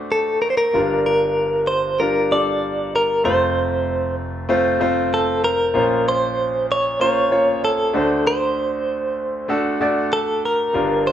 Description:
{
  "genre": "pop",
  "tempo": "96 BPM",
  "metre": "4/4",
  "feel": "straight",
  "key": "unclear",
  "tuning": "A4 = 440 Hz",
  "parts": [
    { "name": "direct-recorded clean electric guitar", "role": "melody", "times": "0.0-11.1 s", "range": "A4 to F#5", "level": "-18 LUFS", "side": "equal", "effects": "tremolo" },
    { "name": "bright concert grand piano", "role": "accompaniment", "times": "0.0-11.1 s", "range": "F1 to D5", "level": "-21 LUFS", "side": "left 1 dB", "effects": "none" }
  ],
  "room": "moderate large studio reverb, RT60 0.9 s",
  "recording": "band playing live in one room",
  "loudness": "-17 LUFS",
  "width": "side -10 dB against mid",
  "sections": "0.7-11.1 A section",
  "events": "none",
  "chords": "0.0 D7; 0.7 Gm7; 3.2 F; 5.7 Bbmadd9; 7.9 D7",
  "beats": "0.11 | 0.73 1.36 1.99 2.61 | 3.24 3.87 4.49 5.12 | 5.74 6.37 7.00 7.62 | 8.25 8.87 9.50 10.13 | 10.75"
}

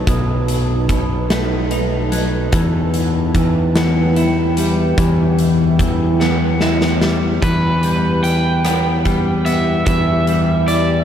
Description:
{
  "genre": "post-rock",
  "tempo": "49 BPM (dotted quarters)",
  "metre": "6/8",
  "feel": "straight",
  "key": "unclear",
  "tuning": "A4 = 439 Hz",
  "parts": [
    { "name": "deep dark ambient pad", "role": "sustained chords", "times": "0.0-11.0 s", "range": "D#4 to A5", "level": "-24 LUFS", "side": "right 4 dB", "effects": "chorus, built-in reverb" },
    { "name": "semi-hollow electric guitar", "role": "arpeggios", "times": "0.0-11.0 s", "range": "B2 to E4", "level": "-18 LUFS", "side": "left 2 dB", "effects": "spring reverb, tape echo" },
    { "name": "growling fingered electric bass", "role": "bass", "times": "0.0-11.0 s", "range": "B1 to E2", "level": "-20 LUFS", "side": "equal", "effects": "overdrive" },
    { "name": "big rock drum kit", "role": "drums", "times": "0.1-10.9 s", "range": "hi-hat, kick drum, rim click, snare drum", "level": "-21 LUFS", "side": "equal", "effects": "none" },
    { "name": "crunchy overdriven guitar", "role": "melody", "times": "7.4-11.0 s", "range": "B4 to G5", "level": "-19 LUFS", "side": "right 1 dB", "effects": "tape echo" }
  ],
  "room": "wet huge ambient reverb, RT60 7.4 s",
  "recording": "dreamy mix soaked in reverb",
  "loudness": "-14 LUFS",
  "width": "side -9 dB against mid",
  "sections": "0.0-7.4 A section; 7.4-11.0 B section",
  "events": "drum fill 6.2-7.4",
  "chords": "0.0 B7; 2.5 Em",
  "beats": "| 0.07 1.30 | 2.53 3.75 | 4.98 6.21 | 7.43 8.65 | 9.87"
}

